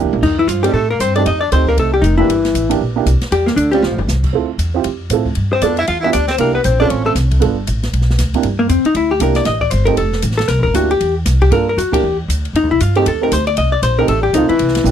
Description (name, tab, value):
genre	jazz, small-group swing and bop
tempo	234 BPM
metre	4/4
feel	swing 60% on 8ths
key	C mixolydian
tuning	A4 = 440 Hz
part	dark upright piano	accompaniment	0.0-14.9 s	C3 to Bb4	-18 LUFS	right 14 dB	none
part	upright bass	bass	0.0-14.9 s	F1 to A2	-17 LUFS	equal	none
part	open jazz drum kit	drums	0.1-14.9 s	crash cymbal, hi-hat, kick drum, ride cymbal, snare drum, toms	-25 LUFS	equal	none
part	vintage hollow-body jazz guitar	melody	0.2-14.9 s	Bb3 to F5	-15 LUFS	left 4 dB	none
part	growling tenor saxophone	second line	0.2-7.1, 14.1-14.9 s	Bb2 to F4	-24 LUFS	right 4 dB	tape echo
room	little or no reverb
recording	dry, close 1970s-style studio recording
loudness	-13 LUFS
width	side -9 dB against mid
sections	0.0-8.4 A section; 8.4-14.9 A section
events	drum fill 0.0, 3.8; band accent 11.9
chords	0.2 F9; 2.3 C9; 3.3 Dm11; 3.8 G9sus4; 4.3 Dm7; 5.4 G9; 6.4 C9; 6.9 Aaug; 7.4 G9; 8.4 C9; 9.5 Fadd9; 10.5 C9; 11.5 Gm7; 12.0 Dsus24; 12.5 F9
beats	| 0.23 0.48 0.74 1.00 | 1.25 1.51 1.77 2.02 | 2.28 2.54 2.79 3.05 | 3.31 3.56 3.82 4.08 | 4.33 4.59 4.85 5.10 | 5.36 5.62 5.87 6.13 | 6.39 6.64 6.90 7.16 | 7.41 7.67 7.92 8.18 | 8.44 8.69 8.95 9.21 | 9.46 9.72 9.97 10.23 | 10.49 10.74 11.00 11.26 | 11.51 11.77 12.02 12.28 | 12.54 12.79 13.05 13.30 | 13.56 13.82 14.07 14.33 | 14.59 14.84